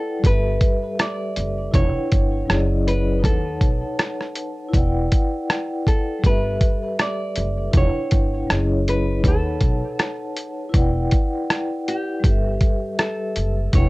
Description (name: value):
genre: lo-fi hip hop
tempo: 80 BPM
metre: 4/4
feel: swing 58% on 16ths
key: E dorian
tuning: A4 = 438 Hz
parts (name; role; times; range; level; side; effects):
- nylon-string guitar; melody; 0.0-13.9 s; G4 to D5; -28 LUFS; right 1 dB; low-pass filter
- vibraphone with soft mallets; accompaniment; 0.0-13.9 s; F#3 to A5; -25 LUFS; left 1 dB; cassette tape, low-pass filter
- upright bass; bass; 0.2-13.9 s; E1 to D#2; -23 LUFS; equal; none
- lo-fi sampler-style drum kit; drums; 0.2-13.9 s; hi-hat, kick drum, rim click; -19 LUFS; equal; none
room: light reverb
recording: cassette tape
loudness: -18 LUFS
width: side -21 dB against mid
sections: 0.0-13.9 A section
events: none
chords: 0.2 G69; 1.7 Em9; 2.5 F#sus2; 3.2 B9; 4.7 Em9; 6.2 G69; 7.7 Em9; 8.5 F#sus2; 9.2 B9; 10.7 Em9; 12.2 G69